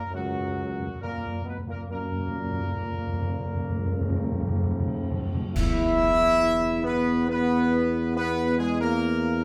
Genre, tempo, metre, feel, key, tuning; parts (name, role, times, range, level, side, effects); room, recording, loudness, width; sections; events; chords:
classical, ceremonial fanfare; 64-70 BPM; 4/4; straight; A4 = 439 Hz
clear trumpet section; melody; 0.0-9.4 s; F#4 to E5; -33 LUFS; equal
warm French horn section; sustained chords; 0.0-9.4 s; F#3 to E4; -33 LUFS; equal
timpani; percussion; 0.0-5.5 s; F#2; -32 LUFS; equal
clear trombone section; sustained chords; 0.1-9.4 s; F#2 to E4; -34 LUFS; equal
mellow tuba; bass; 0.1-9.4 s; C#2 to F#2; -30 LUFS; equal
cymbal swell, clash cymbals and concert bass drum; percussion; 1.9-7.3 s; -34 LUFS; equal
moderate large studio reverb, RT60 1.3 s; close, detailed microphones; -26 LUFS; mono
0.0-5.6 A section; 5.6-9.4 B section
timpani fill 0.0-5.6; band accent 5.6-6.4
0.0 F#; 5.6 E5